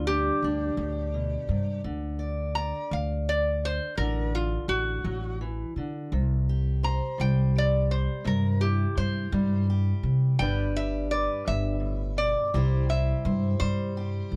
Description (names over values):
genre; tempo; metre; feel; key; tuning
acoustic country blues, solo or duo; 56 BPM (dotted quarters); 12/8; straight; G major; A4 = 441 Hz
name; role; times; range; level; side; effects
lap resonator guitar; melody; 0.0-14.4 s; F4 to Bb5; -33 LUFS; equal; none
fingerpicked steel-string acoustic guitar; accompaniment; 0.0-14.4 s; G2 to D5; -36 LUFS; equal; none
upright bass; bass; 0.0-14.4 s; G1 to D3; -29 LUFS; equal; none
room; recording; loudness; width
little or no reverb; close, detailed microphones; -27 LUFS; mono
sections
0.0-14.4 A section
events
resonator guitar played with a steel bar solo 0.0-14.4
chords
0.0 G; 1.8 D5; 6.1 C; 10.4 G; 12.5 C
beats
0.78 | 1.85 2.92 3.98 5.05 | 6.12 7.18 8.25 9.32 | 10.39 11.46 12.53 13.60